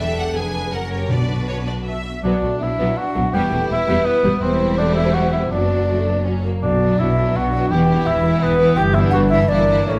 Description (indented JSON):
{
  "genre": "classical, dramatic, fast romantic movement for symphony orchestra",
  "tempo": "151-172 BPM",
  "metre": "3/4",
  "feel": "rubato",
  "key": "B minor",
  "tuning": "A4 = 440 Hz",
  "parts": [
    { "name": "clear studio violin section", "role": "melody", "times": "0.0-9.9 s", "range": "C#4 to Ab5", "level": "-33 LUFS", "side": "equal", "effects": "none" },
    { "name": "warm symphonic violin section", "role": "second line", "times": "0.0-9.9 s", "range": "A3 to Cb5", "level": "-32 LUFS", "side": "equal", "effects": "none" },
    { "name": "clear symphonic viola section", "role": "accompaniment", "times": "0.0-9.9 s", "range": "E3 to E5", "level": "-27 LUFS", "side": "equal", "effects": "none" },
    { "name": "rich symphonic cello section", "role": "bass", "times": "0.0-10.0 s", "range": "E2 to B2", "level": "-26 LUFS", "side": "equal", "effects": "none" },
    { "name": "warm studio double bass section", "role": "bass", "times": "0.0-10.0 s", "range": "E1 to B1", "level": "-26 LUFS", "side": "equal", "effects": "none" },
    { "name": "timpani", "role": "percussion", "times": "1.1-1.6 s", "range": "B2", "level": "-26 LUFS", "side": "equal", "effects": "none" },
    { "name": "mellow cor anglais", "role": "second line", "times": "2.2-10.0 s", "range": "B3 to G4", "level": "-28 LUFS", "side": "equal", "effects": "none" },
    { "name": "mellow hollow silver concert flute", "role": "second line", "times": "2.2-10.0 s", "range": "B4 to G5", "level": "-23 LUFS", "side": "equal", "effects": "none" },
    { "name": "mellow French horn section", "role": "sustained chords", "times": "2.2-10.0 s", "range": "D4 to B4", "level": "-29 LUFS", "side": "equal", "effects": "none" }
  ],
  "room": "moderate scoring stage reverb, RT60 1.6 s",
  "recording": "none",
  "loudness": "-18 LUFS",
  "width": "mono",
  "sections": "0.0-2.2 A section; 2.2-10.0 B section",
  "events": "none",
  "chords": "0.0 Em7; 0.4 Fdim7; 0.7 F#; 1.1 Bm; 3.3 Em; 4.4 C/E; 5.5 Bm/F#; 6.6 Bm; 7.7 Em; 8.8 Em7/G; 9.5 Em7b5/G"
}